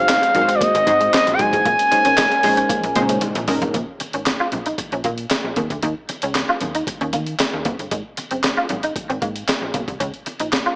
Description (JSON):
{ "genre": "early-eighties boogie funk", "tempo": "115 BPM", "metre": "4/4", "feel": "straight", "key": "Bb minor", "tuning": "A4 = 440 Hz", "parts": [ { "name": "expressive portamento lead", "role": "melody", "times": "0.0-3.2 s", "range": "D5 to Ab5", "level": "-16 LUFS", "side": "equal", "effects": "chorus" }, { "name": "funky polysynth comp", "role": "accompaniment", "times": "0.0-3.7 s", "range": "Ab3 to C5", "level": "-22 LUFS", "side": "equal", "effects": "chorus" }, { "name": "lush unison pad", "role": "sustained chords", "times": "0.0-3.7 s", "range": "Ab3 to Gb4", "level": "-28 LUFS", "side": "equal", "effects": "none" }, { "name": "clean electric guitar", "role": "riff", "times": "0.0-10.7 s", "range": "Gb3 to F4", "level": "-24 LUFS", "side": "right 1 dB", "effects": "ensemble chorus" }, { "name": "slap-like FM bass", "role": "bass", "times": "0.0-10.6 s", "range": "Gb1 to Eb3", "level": "-27 LUFS", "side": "equal", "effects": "none" }, { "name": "breakbeat sampler-style drum kit", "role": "drums", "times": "0.1-10.7 s", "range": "handclaps, hi-hat, kick drum, snare drum, toms", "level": "-23 LUFS", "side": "equal", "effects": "gated reverb" }, { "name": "congas", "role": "percussion", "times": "0.1-10.7 s", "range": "none", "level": "-32 LUFS", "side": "equal", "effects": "none" } ], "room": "light reverb, digital ambience", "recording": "small speaker sound", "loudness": "-17 LUFS", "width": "side -27 dB against mid", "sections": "0.0-3.7 A section; 3.7-10.8 B section", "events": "drum fill 2.7-3.7", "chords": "0.0 Ab7; 1.7 Bbm11; 3.7 Bbm; 5.6 Eb7(no3); 7.9 Ab; 10.0 Db6" }